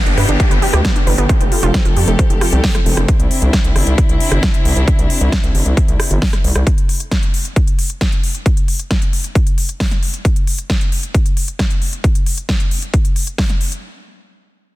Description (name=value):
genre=uplifting trance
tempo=134 BPM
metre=4/4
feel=straight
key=C major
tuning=A4 = 439 Hz
part: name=dark chamber string section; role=sustained chords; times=0.0-6.6 s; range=C3 to A4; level=-22 LUFS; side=left 2 dB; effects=sidechain pumping
part: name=wide unison pluck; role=arpeggios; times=0.0-3.0 s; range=A3 to C5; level=-22 LUFS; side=right 5 dB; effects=sidechain pumping, ping-pong delay
part: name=downlifter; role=sound effects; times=0.0-3.1 s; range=none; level=-24 LUFS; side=equal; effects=none
part: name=gritty driven synth bass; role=bass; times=0.1-6.6 s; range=F1 to G2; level=-15 LUFS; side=equal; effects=sidechain pumping
part: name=big-room dance drum kit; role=drums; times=0.1-13.8 s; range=hi-hat, rim click, snare drum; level=-22 LUFS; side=equal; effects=overdrive, sidechain pumping on hats, sidechain pumping on cymbals, sidechain pumping on perc
part: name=electronic kick drum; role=drums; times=0.4-13.5 s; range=none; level=-15 LUFS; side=equal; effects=overdrive
room=digital ambience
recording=dense, heavily limited modern master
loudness=-13 LUFS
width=side -17 dB against mid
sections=0.0-13.8 A section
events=filter sweep on synth arpeggio sound 0.0-3.1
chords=0.0 G; 1.3 Fadd9; 3.1 Cadd9; 6.7 N.C.